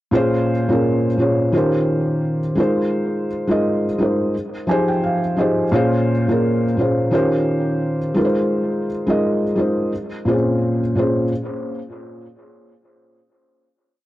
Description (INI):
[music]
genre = hip hop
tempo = 86 BPM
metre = 4/4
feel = swing 59% on 16ths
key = Bb dorian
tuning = A4 = 439 Hz
[part]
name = felt-muted upright piano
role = solo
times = 0.1-11.3 s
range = Bb2 to Ab5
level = -17 LUFS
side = equal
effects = cassette tape, analog delay
[sound]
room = moderate small room reverb, RT60 0.5 s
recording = dry, gritty hardware recording, cassette tape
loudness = -17 LUFS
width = side -15 dB against mid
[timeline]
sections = 0.1-11.3 A section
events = felt piano fill 4.3-5.7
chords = 0.1 Bbm9; 1.5 Eb13; 2.6 Ab69; 4.3 Fm9; 5.7 Bbm9; 7.1 Eb13; 8.2 Ab69; 9.9 Bbm9